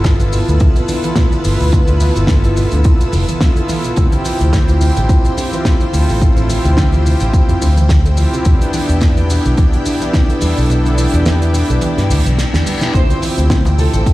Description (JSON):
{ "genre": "nu-disco, nu disco", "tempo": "107 BPM", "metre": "4/4", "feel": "swing 56% on 16ths", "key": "D dorian", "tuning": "A4 = 440 Hz", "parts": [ { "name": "warm analog pad", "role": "accompaniment", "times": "0.0-14.1 s", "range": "B3 to B4", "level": "-19 LUFS", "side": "equal", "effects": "chorus, sidechain pumping, tape echo" }, { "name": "string machine, full ensemble", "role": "sustained chords", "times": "0.0-14.1 s", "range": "B4 to E6", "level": "-26 LUFS", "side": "left 1 dB", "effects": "ensemble chorus, sidechain pumping" }, { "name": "wide unison pluck", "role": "arpeggios", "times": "0.0-14.1 s", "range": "B2 to G3", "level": "-24 LUFS", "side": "right 2 dB", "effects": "none" }, { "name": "fingered electric bass with an envelope filter", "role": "bass", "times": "0.0-14.0 s", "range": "F1 to G2", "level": "-14 LUFS", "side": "equal", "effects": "none" }, { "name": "damped 70s drum kit", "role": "drums", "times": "0.0-14.1 s", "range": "hi-hat, shaker, snare drum", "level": "-22 LUFS", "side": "right 1 dB", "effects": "none" }, { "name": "electronic kick drum", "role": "drums", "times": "0.0-14.1 s", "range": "none", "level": "-12 LUFS", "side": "equal", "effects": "overdrive" }, { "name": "reverse cymbal", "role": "sound effects", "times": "12.1-12.9 s", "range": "none", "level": "-28 LUFS", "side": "left 4 dB", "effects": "none" }, { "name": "warm symphonic violin section", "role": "melody", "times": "12.9-14.0 s", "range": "A4 to C5", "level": "-24 LUFS", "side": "equal", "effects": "none" }, { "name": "maracas and congas", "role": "percussion", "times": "12.9-14.1 s", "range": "none", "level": "-25 LUFS", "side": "left 2 dB", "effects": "none" } ], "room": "little or no reverb", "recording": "played on a big sound system in a bare room, large studio reverb", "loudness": "-11 LUFS", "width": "side -17 dB against mid", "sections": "0.0-14.1 A section", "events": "kick drops out 10.7-12.9; reverse cymbal 12.1-12.9; drum fill 12.4-12.9", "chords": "0.0 G13; 4.0 Dm11; 8.5 Em7; 12.9 Dm11", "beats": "0.05 0.61 1.17 | 1.73 2.29 2.85 3.41 | 3.97 4.53 5.09 5.65 | 6.21 6.78 7.34 7.90 | 8.46 9.02 9.58 10.14 | 10.70 11.26 11.82 12.38 | 12.94 13.50 14.06" }